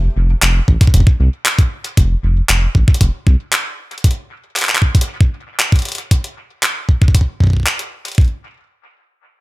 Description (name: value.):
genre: IDM.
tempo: 116 BPM.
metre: 4/4.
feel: straight.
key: F major.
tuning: A4 = 440 Hz.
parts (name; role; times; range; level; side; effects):
round analog bass; bass; 0.0-3.4 s; F1 to C2; -14 LUFS; equal; none.
jungle sampler-style drum kit; drums; 0.4-8.3 s; handclaps, hi-hat; -17 LUFS; equal; none.
electronic kick drum; drums; 0.7-8.3 s; none; -11 LUFS; equal; none.
room: little or no reverb.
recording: none.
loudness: -12 LUFS.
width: side -21 dB against mid.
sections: 0.0-8.2 A section; 8.2-9.4 B section.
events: none.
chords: none.